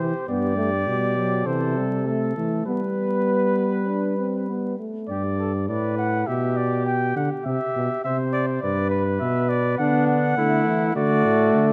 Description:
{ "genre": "classical, imitative canzona for brass ensemble", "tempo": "102 BPM", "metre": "4/4", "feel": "straight", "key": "G major", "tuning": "A4 = 438 Hz", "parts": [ { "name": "mellow trumpet", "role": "melody", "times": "0.0-11.7 s", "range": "A4 to G5", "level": "-29 LUFS", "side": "equal", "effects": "none" }, { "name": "warm flugelhorn", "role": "second line", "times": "0.0-11.7 s", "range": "D4 to C5", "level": "-31 LUFS", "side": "equal", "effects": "none" }, { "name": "mellow bass trombone", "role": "bass", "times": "0.0-11.7 s", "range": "G2 to G3", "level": "-27 LUFS", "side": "equal", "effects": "none" }, { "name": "dark trombone", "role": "accompaniment", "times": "0.3-5.1, 9.8-11.7 s", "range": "E3 to D4", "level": "-26 LUFS", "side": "equal", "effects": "none" } ], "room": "moderate concert hall reverb, RT60 2.0 s", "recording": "vinyl crackle", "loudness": "-23 LUFS", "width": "mono", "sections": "0.0-5.1 A section; 5.1-11.7 B section", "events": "none", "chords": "0.3 Gmaj7; 1.5 Am/C; 2.1 C6; 2.7 G; 6.3 G/B; 7.5 C; 8.6 G; 9.8 D" }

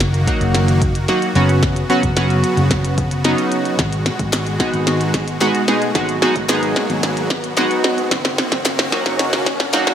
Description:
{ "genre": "dance-pop", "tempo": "111 BPM", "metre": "4/4", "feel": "straight", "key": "G# minor", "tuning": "A4 = 439 Hz", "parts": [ { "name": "supersaw chords", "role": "sustained chords", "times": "0.0-9.9 s", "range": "B2 to F#4", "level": "-24 LUFS", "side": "equal", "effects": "sidechain pumping" }, { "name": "vintage muted fingered electric bass", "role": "bass", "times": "0.0-9.7 s", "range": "F#1 to G#1", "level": "-20 LUFS", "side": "equal", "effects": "sidechain pumping" }, { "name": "minimal click drum kit", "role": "drums", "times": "0.0-9.9 s", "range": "hi-hat, kick drum, snare drum", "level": "-20 LUFS", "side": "equal", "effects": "none" }, { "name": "riser", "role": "sound effects", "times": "0.1-9.9 s", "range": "none", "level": "-29 LUFS", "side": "left 1 dB", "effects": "none" }, { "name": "chorused retro synth keys", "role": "accompaniment", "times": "0.3-9.9 s", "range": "F#3 to G#4", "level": "-18 LUFS", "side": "right 1 dB", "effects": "sidechain pumping" }, { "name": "group handclap", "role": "percussion", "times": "4.3-9.9 s", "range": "none", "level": "-27 LUFS", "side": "left 3 dB", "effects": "none" } ], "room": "light reverb", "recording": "high-pass filter", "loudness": "-15 LUFS", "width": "side -9 dB against mid", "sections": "0.0-9.9 A section", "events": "build-up 0.0-9.9; drum fill 0.0-9.9; filter sweep 0.0-9.9; riser 0.1-9.9", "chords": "0.0 D#m/F#; 1.4 F#sus4; 3.8 G#m7; 8.1 D#m/F#" }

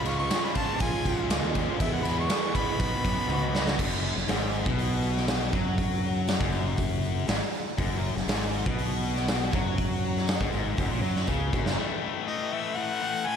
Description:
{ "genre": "classic rock", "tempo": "120 BPM", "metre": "4/4", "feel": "straight", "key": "unclear", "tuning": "A4 = 440 Hz", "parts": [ { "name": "clear harmonica", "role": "melody", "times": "0.0-3.8, 12.3-13.4 s", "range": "D#5 to C#6", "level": "-32 LUFS", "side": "equal", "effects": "none" }, { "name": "raw garage guitar", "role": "riff", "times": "0.0-11.8 s", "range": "E2 to G#4", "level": "-34 LUFS", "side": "right 10 dB", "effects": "overdrive, slapback echo" }, { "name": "tight distorted guitar", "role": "riff", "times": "0.0-13.4 s", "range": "F#2 to E#4", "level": "-32 LUFS", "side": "left 9 dB", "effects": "distortion, slapback echo" }, { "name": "growling fingered electric bass", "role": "bass", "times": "0.0-11.8 s", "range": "F#1 to F#2", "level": "-30 LUFS", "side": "equal", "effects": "overdrive" }, { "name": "big rock drum kit", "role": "drums", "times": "0.1-11.8 s", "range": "crash cymbal, hi-hat, kick drum, ride cymbal, snare drum, toms", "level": "-29 LUFS", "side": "equal", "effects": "none" }, { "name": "tambourine", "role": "percussion", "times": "0.3-11.6 s", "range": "none", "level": "-50 LUFS", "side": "right 7 dB", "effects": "none" } ], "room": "moderate lush hall reverb, RT60 2.1 s", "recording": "big arena sound", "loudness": "-25 LUFS", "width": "side -7 dB against mid", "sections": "0.0-3.8 A section; 3.8-11.8 B section; 11.8-13.4 C section", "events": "harmonica solo 0.0-3.8; drum fill 3.3-3.8, 11.3-11.8", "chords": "0.0 C#; 1.8 E; 2.8 B; 3.8 N.C.; 11.8 A5" }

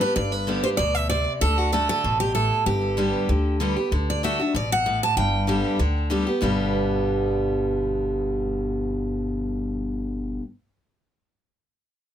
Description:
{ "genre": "bluegrass", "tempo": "192 BPM", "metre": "4/4", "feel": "swing 53% on 8ths", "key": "G major", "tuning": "A4 = 440 Hz", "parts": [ { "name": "picked steel-string acoustic guitar", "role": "melody", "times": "0.0-6.1 s", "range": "F#4 to A5", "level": "-24 LUFS", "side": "right 1 dB", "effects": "tape echo" }, { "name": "picked steel-string acoustic guitar", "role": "accompaniment", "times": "0.0-10.4 s", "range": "G2 to G4", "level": "-25 LUFS", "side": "equal", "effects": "none" }, { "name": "upright bass", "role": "bass", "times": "0.2-10.4 s", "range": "G1 to D2", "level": "-27 LUFS", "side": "equal", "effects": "none" } ], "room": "moderate booth ambience, RT60 0.2 s", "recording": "none", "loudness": "-21 LUFS", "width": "side -10 dB against mid", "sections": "0.0-3.9 A section; 3.9-6.4 B section; 6.4-8.9 C section", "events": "none", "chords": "0.0 G; 1.4 D; 2.7 G; 3.9 D; 5.2 G" }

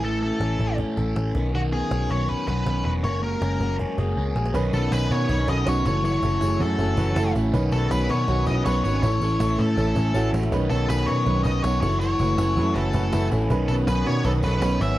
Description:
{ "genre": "jangly indie pop", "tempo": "161 BPM", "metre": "4/4", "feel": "straight", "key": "unclear", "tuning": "A4 = 440 Hz", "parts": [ { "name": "octave-fuzz lead guitar", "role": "melody", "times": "0.0-15.0 s", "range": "F#4 to E5", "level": "-28 LUFS", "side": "left 1 dB", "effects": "distortion" }, { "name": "crunchy overdriven guitar", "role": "accompaniment", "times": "0.0-15.0 s", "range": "F#2 to A4", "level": "-31 LUFS", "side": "right 2 dB", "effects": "phaser" }, { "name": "electric guitar through a small old amp", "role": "arpeggios", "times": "0.0-15.0 s", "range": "D#3 to A4", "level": "-28 LUFS", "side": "left 2 dB", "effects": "slapback echo" }, { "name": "vintage muted picked electric bass", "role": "bass", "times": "0.0-15.0 s", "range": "E1 to B2", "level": "-24 LUFS", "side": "equal", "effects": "none" }, { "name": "cajon", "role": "drums", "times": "0.0-14.9 s", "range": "none", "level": "-30 LUFS", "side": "equal", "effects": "none" }, { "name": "warm upright piano", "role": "accompaniment", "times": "4.5-15.0 s", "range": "C#4 to A5", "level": "-29 LUFS", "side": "right 4 dB", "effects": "none" }, { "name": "warm studio string section", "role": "sustained chords", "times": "4.5-15.0 s", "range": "C#5 to E6", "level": "-39 LUFS", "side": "right 1 dB", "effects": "none" }, { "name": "tambourine", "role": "percussion", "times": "4.5-14.9 s", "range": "none", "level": "-48 LUFS", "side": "left 4 dB", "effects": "none" } ], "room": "little or no reverb", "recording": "dry, close 1970s-style studio recording, vinyl crackle", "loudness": "-20 LUFS", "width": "side -15 dB against mid", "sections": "0.0-4.5 A section; 4.5-15.0 B section", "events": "drum fill 4.2-4.5, 10.1-10.5; upright piano fill 7.0-7.5", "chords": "0.0 A; 1.4 Badd9; 3.0 F#add9; 4.5 Badd9; 5.9 F#m7; 7.5 Badd9; 9.0 A; 10.5 Badd9; 11.8 F#m7; 13.5 Badd9" }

